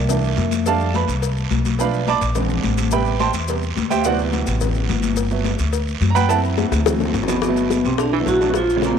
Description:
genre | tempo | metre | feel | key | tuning
Afro-Cuban jazz | 213 BPM | 4/4 | straight | unclear | A4 = 440 Hz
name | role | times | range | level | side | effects
clear upright piano | accompaniment | 0.0-9.0 s | C3 to D6 | -22 LUFS | right 9 dB | none
upright bass | bass | 0.0-8.9 s | G1 to F#2 | -22 LUFS | left 1 dB | none
congas | percussion | 0.1-9.0 s | none | -26 LUFS | left 11 dB | none
cowbell and bongos | percussion | 0.1-9.0 s | none | -26 LUFS | left 11 dB | none
guiro | percussion | 0.1-9.0 s | none | -31 LUFS | right 11 dB | none
maracas | percussion | 0.1-9.0 s | none | -36 LUFS | left 12 dB | none
vibraphone with medium mallets | melody | 7.3-9.0 s | Bb3 to F#4 | -19 LUFS | left 2 dB | none
mellow baritone saxophone | second line | 7.3-9.0 s | Bb2 to F#3 | -24 LUFS | right 10 dB | none
room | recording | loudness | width
light reverb, small room ambience | 1960s-style stereo with parts hard left and right | -17 LUFS | side -7 dB against mid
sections
0.0-7.4 A section; 7.4-9.0 B section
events
upright piano solo 0.0-7.4; drum fill 6.6-7.4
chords
0.1 C13; 0.7 F6; 1.8 Bm7b5; 2.4 A#9; 2.9 Am9; 4.0 D13; 5.2 Gmaj7; 6.3 F#m7b5; 6.9 D7; 7.4 Gmaj7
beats
0.10 0.38 | 0.66 0.95 1.23 1.51 | 1.80 2.08 2.36 2.64 | 2.92 3.21 3.49 3.77 | 4.05 4.33 4.61 4.89 | 5.17 5.46 5.74 6.02 | 6.30 6.58 6.86 7.14 | 7.42 7.70 7.99 8.27 | 8.55 8.83

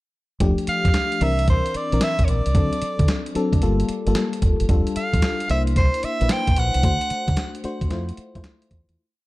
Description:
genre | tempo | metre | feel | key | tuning
R&B, new jack swing | 112 BPM | 4/4 | swing 67% on 16ths | unclear | A4 = 440 Hz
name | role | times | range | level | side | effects
FM electric piano with tremolo | accompaniment | 0.4-9.0 s | E3 to C5 | -26 LUFS | left 3 dB | none
deep dub fingered electric bass | bass | 0.4-9.0 s | F1 to D3 | -23 LUFS | equal | none
dusty soul sampler-style drum kit | drums | 0.4-9.0 s | hi-hat, kick drum, snare drum | -22 LUFS | equal | none
breathy soprano saxophone | melody | 0.7-7.6 s | C5 to G5 | -25 LUFS | right 1 dB | none
room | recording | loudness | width
little or no reverb | dark, warm production | -18 LUFS | side -19 dB against mid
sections
0.4-9.0 verse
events
fade-out 6.8-9.0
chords
0.4 F69; 1.2 C9; 2.5 D7; 3.6 Gm9; 4.7 F69; 5.5 C9; 6.8 D7; 7.9 Fmaj7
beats
| 0.40 0.94 1.48 2.01 | 2.55 3.08 3.62 4.15 | 4.69 5.22 5.76 6.30 | 6.83 7.37 7.90 8.44

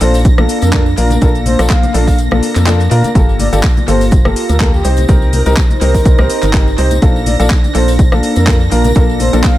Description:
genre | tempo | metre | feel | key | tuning
piano house | 124 BPM | 4/4 | swing 55% on 16ths | Bb major | A4 = 442 Hz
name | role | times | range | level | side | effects
breathy flute-like synth lead | melody | 0.0-9.6 s | G4 to F5 | -21 LUFS | equal | chorus, analog delay
analog string pad | sustained chords | 0.0-9.6 s | Bb6 | -26 LUFS | right 4 dB | ensemble chorus, sidechain pumping
clear grand piano | riff | 0.0-9.4 s | Bb3 to C5 | -17 LUFS | left 2 dB | sidechain pumping, analog delay
organ-like FM bass | bass | 0.0-9.4 s | G1 to Bb2 | -13 LUFS | equal | sidechain pumping
garage drum kit | drums | 0.0-9.5 s | cabasa, handclaps, hi-hat, rim click | -21 LUFS | equal | analog delay
warbly tape-like pad | texture | 0.0-9.6 s | Bb3 to Bb5 | -21 LUFS | equal | chorus, built-in reverb, sidechain pumping
tambourine and congas | percussion | 0.1-9.5 s | none | -25 LUFS | left 4 dB | none
electronic kick drum | drums | 0.2-9.5 s | none | -11 LUFS | equal | none
room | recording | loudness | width
little or no reverb | echo-heavy mix | -9 LUFS | side -14 dB against mid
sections
0.0-9.6 A section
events
kick drops out 2.2-3.2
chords
0.0 Bbmaj7; 3.2 Gm9; 4.8 Cm7; 7.0 Bbmaj7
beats
0.25 0.73 | 1.22 1.70 2.19 2.67 | 3.15 3.64 4.12 4.60 | 5.09 5.57 6.06 6.54 | 7.02 7.51 7.99 8.47 | 8.96 9.44

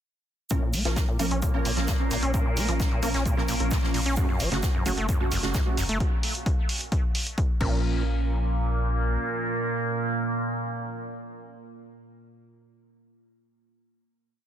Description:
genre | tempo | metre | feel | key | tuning
driving peak-time techno | 131 BPM | 4/4 | straight | Bb harmonic minor | A4 = 440 Hz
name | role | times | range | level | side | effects
overdriven acid bass | riff | 0.5-8.0 s | Gb2 to Db4 | -32 LUFS | equal | sidechain pumping, dub echo
rave stab | stabs | 0.5-11.5 s | Db3 to Bb4 | -33 LUFS | right 3 dB | chorus, built-in reverb, sidechain pumping, dub echo
overtone-sweeping drone | drone | 1.1-11.5 s | Bb2 to Bb3 | -32 LUFS | right 2 dB | chorus, built-in reverb, sidechain pumping
electronic kick drum | drums | 0.5-7.7 s | none | -26 LUFS | equal | none
punchy analog drum machine | drums | 0.5-7.7 s | crash cymbal, hi-hat | -33 LUFS | equal | sidechain pumping on hats, sidechain pumping on cymbals
unplugged drum kit | drums | 0.5-5.9 s | hi-hat, shaker, snare drum | -36 LUFS | right 1 dB | high-pass filter on hats, high-pass filter on snare, high-pass filter on perc, high-pass filter on room
warm sub bass | bass | 0.7-9.2 s | Gb1 to Bb1 | -28 LUFS | equal | tube saturation, sidechain pumping, low-pass filter
room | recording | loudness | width
light reverb, small room ambience | dense, heavily limited modern master | -24 LUFS | side -10 dB against mid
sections
0.5-7.8 groove; 7.8-11.5 final hit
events
filter sweep on acid bass 0.5-6.0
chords
0.5 Bbm; 4.2 Gbm; 7.6 Bbm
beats
| 0.51 0.97 1.42 1.88 | 2.34 2.80 3.26 3.71 | 4.17 4.63 5.09 5.55 | 6.00 6.46 6.92 7.38 | 7.84 8.29 8.75 9.21 | 9.67 10.13 10.58 11.04

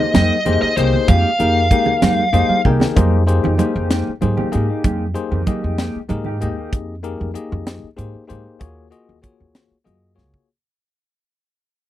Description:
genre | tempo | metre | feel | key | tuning
electric jazz fusion | 64 BPM (dotted quarters) | 6/8 | straight | F minor | A4 = 440 Hz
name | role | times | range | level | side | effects
bluesy overdriven lead guitar | melody | 0.0-2.6 s | C5 to F5 | -17 LUFS | left 1 dB | distortion, slapback echo
bell-like tine electric piano | accompaniment | 0.0-10.5 s | Bb3 to Ab5 | -23 LUFS | left 5 dB | medium stereo tremolo
mellow electric guitar | stabs | 0.0-6.7 s | Ab3 to G4 | -24 LUFS | right 1 dB | analog chorus
crisp fusion drum kit | drums | 0.1-10.5 s | hi-hat, kick drum, snare drum | -18 LUFS | equal | none
congas | percussion | 0.1-6.4 s | none | -23 LUFS | right 5 dB | none
upright bass | bass | 0.2-10.3 s | C2 to Ab2 | -20 LUFS | equal | none
room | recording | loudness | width
little or no reverb | dry, close 1970s-style studio recording | -15 LUFS | side -13 dB against mid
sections
0.0-3.0 A section; 3.0-10.5 B section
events
tine electric piano fill 2.0-3.0, 5.8-6.7; drum fill 2.5-3.0, 10.2-10.5; fade-out 3.0-10.5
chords
0.0 Fm11; 8.6 Ebm11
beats
0.15 | 1.08 2.02 | 2.96 3.90 | 4.84 5.78 | 6.72 7.67 | 8.61 9.55

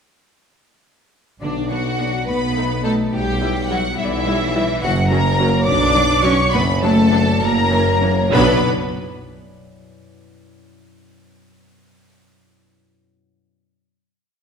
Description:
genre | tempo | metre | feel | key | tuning
cinematic, playful, whimsical film cue | 69 BPM (dotted quarters) | 6/8 | uneven beats | B minor | A4 = 441 Hz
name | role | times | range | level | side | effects
rich studio violin section | melody | 1.4-8.7 s | D5 to D6 | -22 LUFS | left 2 dB | none
rich studio violin section | second line | 1.4-8.7 s | D4 to D5 | -24 LUFS | left 1 dB | none
concert harp | arpeggios | 1.4-8.7 s | F#2 to F#5 | -25 LUFS | left 4 dB | none
rich studio cello section | bass | 1.4-8.7 s | D3 to D4 | -22 LUFS | equal | none
rich studio double bass section | bass | 1.4-8.7 s | F#1 to B1 | -24 LUFS | right 2 dB | none
warm tuba | bass | 1.4-8.6 s | F#1 to B1 | -23 LUFS | right 2 dB | none
rich studio viola section | accompaniment | 1.7-8.7 s | E3 to E4 | -26 LUFS | right 1 dB | none
room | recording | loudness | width
wet recital hall reverb, RT60 1.5 s | recorded in a church or concert hall | -15 LUFS | side -6 dB against mid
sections
1.4-8.3 A section; 8.3-10.1 final chord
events
none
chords
1.4 Bm; 2.3 B7; 3.1 Em/B; 4.8 F#; 5.7 Bm; 6.5 Bm/F#; 7.4 F#7; 8.3 Bm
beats
| 1.42 2.28 | 3.13 3.98 | 4.83 5.67 | 6.54 7.42 | 8.33

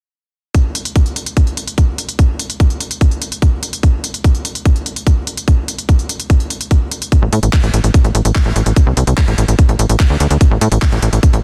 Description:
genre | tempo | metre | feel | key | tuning
psychedelic trance | 146 BPM | 4/4 | straight | A minor | A4 = 439 Hz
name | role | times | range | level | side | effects
electronic kick drum | drums | 0.5-11.3 s | none | -15 LUFS | equal | none
garage drum kit | drums | 0.5-11.4 s | handclaps, hi-hat | -24 LUFS | equal | none
tight sequencer bass | bass | 7.2-11.4 s | A1 to A2 | -15 LUFS | equal | none
room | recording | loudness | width
little or no reverb | dense, heavily limited modern master | -14 LUFS | mono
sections
0.5-11.4 A section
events
none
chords
none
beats
| 0.55 0.96 1.37 1.78 | 2.19 2.60 3.01 3.42 | 3.83 4.24 4.66 5.07 | 5.48 5.89 6.30 6.71 | 7.12 7.53 7.94 8.35 | 8.76 9.18 9.59 10.00 | 10.41 10.82 11.23

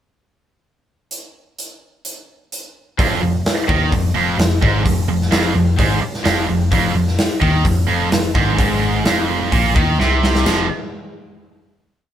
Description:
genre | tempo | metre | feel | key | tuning
hard rock | 128 BPM | 4/4 | straight | unclear | A4 = 440 Hz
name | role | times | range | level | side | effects
big rock drum kit | drums | 1.1-10.6 s | crash cymbal, hi-hat, kick drum, snare drum | -19 LUFS | equal | none
cranked stack guitar | riff | 3.0-10.7 s | F2 to F3 | -21 LUFS | left 4 dB | overdrive
tight distorted guitar | riff | 3.0-10.7 s | F2 to F3 | -19 LUFS | right 6 dB | distortion
picked electric bass | bass | 3.0-10.7 s | F1 to Eb2 | -21 LUFS | equal | none
room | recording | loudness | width
moderate studio reverb, RT60 0.6 s | band playing live in one room | -14 LUFS | side -10 dB against mid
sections
1.1-3.0 pickup bar; 3.0-10.5 riff; 10.5-12.1 final chord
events
drum fill 10.0-10.5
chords
1.1 N.C.; 3.0 F5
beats
| 1.11 1.58 2.05 2.52 | 2.98 3.45 3.92 4.39 | 4.85 5.32 5.78 6.25 | 6.72 7.18 7.65 8.12 | 8.58 9.05 9.52 9.99 | 10.46

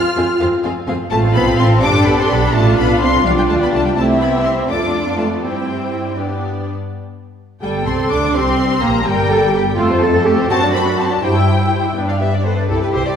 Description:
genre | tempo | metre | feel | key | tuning
quick classical-period movement for string orchestra | 84 BPM (dotted quarters) | 6/8 | straight | C major | A4 = 440 Hz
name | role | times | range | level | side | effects
warm symphonic violin section | melody | 0.0-13.2 s | A4 to F6 | -22 LUFS | left 4 dB | none
rich symphonic cello section | bass | 0.0-13.2 s | F3 to Bb4 | -19 LUFS | right 1 dB | none
warm symphonic violin section | second line | 0.2-13.2 s | G4 to D6 | -23 LUFS | left 2 dB | none
rich symphonic viola section | accompaniment | 0.2-13.0 s | G3 to E5 | -19 LUFS | equal | none
rich symphonic double bass section | bass | 0.2-13.0 s | G1 to G2 | -19 LUFS | right 1 dB | none
room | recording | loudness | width
wet scoring stage reverb, RT60 1.6 s | heard from further back in the room | -13 LUFS | side -8 dB against mid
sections
0.0-6.9 A section; 6.9-13.2 B section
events
none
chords
0.0 Fm; 1.1 F/A; 1.8 G; 2.5 F/A; 3.2 G7/B; 4.0 C; 4.7 Dm/F; 5.4 C/G; 6.2 G; 6.9 N.C.; 7.6 C5/G; 8.3 C5; 9.8 F; 10.5 D7/F#; 11.2 C/G; 12.0 G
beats
0.40 | 1.11 1.83 | 2.54 3.25 | 3.97 4.70 | 5.43 6.17 | 6.91 7.63 | 8.35 9.06 | 9.78 10.50 | 11.22 11.96 | 12.69

